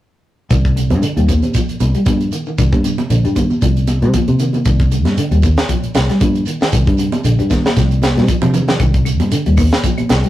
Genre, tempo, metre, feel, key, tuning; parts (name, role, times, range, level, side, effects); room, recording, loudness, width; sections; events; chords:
afrobeat; 116 BPM; 4/4; swing 55% on 16ths; C minor; A4 = 439 Hz
semi-hollow electric guitar; arpeggios; 0.5-10.3 s; C3 to G3; -21 LUFS; equal
fingered electric bass; bass; 0.5-10.2 s; Bb1 to C3; -15 LUFS; equal
tight funk drum kit; drums; 0.5-10.3 s; hi-hat, kick drum, snare drum; -18 LUFS; equal
shekere; percussion; 0.5-10.3 s; -26 LUFS; right 3 dB
congas; percussion; 0.9-10.2 s; -21 LUFS; right 1 dB
claves; percussion; 8.8-10.1 s; -32 LUFS; equal
moderate studio reverb, RT60 0.6 s; rough rehearsal-room recording, warm saturation; -12 LUFS; side -14 dB against mid
0.5-10.3 A section
drum fill 8.0-8.8
0.5 Cm